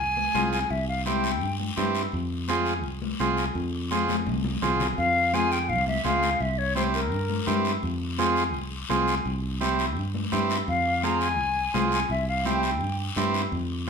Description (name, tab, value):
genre	latin, cumbia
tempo	168 BPM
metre	4/4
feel	straight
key	F harmonic minor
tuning	A4 = 440 Hz
part	concert flute	melody	0.0-1.6, 5.0-7.6, 10.7-13.0 s	Bb4 to Bb5	-26 LUFS	left 2 dB	none
part	fingered electric bass	bass	0.0-13.9 s	C2 to G2	-29 LUFS	equal	none
part	congas	percussion	0.2-13.3 s	none	-32 LUFS	left 7 dB	none
part	combo organ	accompaniment	0.3-13.9 s	C4 to Ab4	-27 LUFS	right 4 dB	none
part	guiro	percussion	0.3-13.9 s	none	-36 LUFS	left 6 dB	none
room	moderate large studio reverb, RT60 0.9 s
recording	band playing live in one room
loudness	-23 LUFS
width	side -6 dB against mid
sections	0.0-5.0 A section; 5.0-13.9 A section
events	drum fill 4.1-5.0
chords	0.0 Fm; 0.7 C; 2.1 Fm; 6.4 C7; 7.8 Fm; 9.3 C; 10.7 Fm; 12.1 C